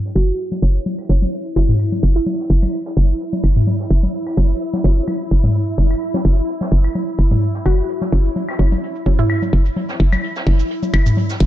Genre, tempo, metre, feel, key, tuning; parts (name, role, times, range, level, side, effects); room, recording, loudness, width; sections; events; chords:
minimal techno; 128 BPM; 4/4; swing 54% on 16ths; A4 = 440 Hz
electronic shaker and hi-hat; drums; 0.0-11.5 s; -39 LUFS; right 1 dB; small room ambience
swarming drone; texture; 0.0-11.5 s; E4; -26 LUFS; equal; built-in reverb
jazz brush drum kit; drums; 0.1-11.5 s; hi-hat, snare drum; -35 LUFS; right 2 dB; high-pass filter on hats, low-pass filter on hats, small room ambience, high-pass filter on snare, low-pass filter on snare, high-pass filter on room, low-pass filter on room
mallet-like synth pluck; melody; 0.2-2.8, 7.7-9.5 s; E4 to F#4; -25 LUFS; right 1 dB; chorus, dub echo
hollow knocking FM bass; bass; 0.2-11.5 s; F#1; -14 LUFS; equal
electronic congas, claves and toms; percussion; 0.2-11.3 s; -21 LUFS; left 1 dB; small room ambience
filtered dub chord stab; stabs; 0.6-9.1 s; C#4 to C#5; -30 LUFS; equal; phaser, lush chorus, dub echo
little or no reverb; dark, warm production, low-pass filter; -15 LUFS; side -13 dB against mid
0.0-11.5 A section
filter sweep 0.0-11.5
0.0 F#5